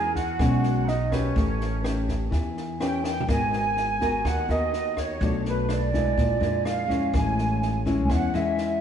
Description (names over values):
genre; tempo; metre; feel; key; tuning
bossa nova; 125 BPM; 4/4; straight; G# minor; A4 = 440 Hz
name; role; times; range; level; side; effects
mellow concert flute; melody; 0.0-8.8 s; B4 to G#5; -28 LUFS; right 4 dB; none
bright flute section; second line; 0.0-8.8 s; C#4 to G#5; -35 LUFS; right 1 dB; none
nylon-string guitar; accompaniment; 0.0-8.8 s; A2 to B4; -27 LUFS; left 2 dB; none
upright bass; bass; 0.0-8.8 s; G#1 to E#2; -29 LUFS; right 1 dB; none
compact cocktail drum kit; drums; 0.2-8.6 s; kick drum, rim click, snare drum, toms; -30 LUFS; equal; none
room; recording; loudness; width
moderate echo chamber reverb, RT60 1.9 s; heard from further back in the room, nothing above 11.0 kHz; -22 LUFS; side -8 dB against mid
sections
0.0-3.3 A section; 3.3-8.8 B section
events
drum fill 3.0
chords
0.0 E69; 1.4 A9; 3.3 G#m9; 5.2 Bm7; 6.2 A#7#11; 7.1 Amaj7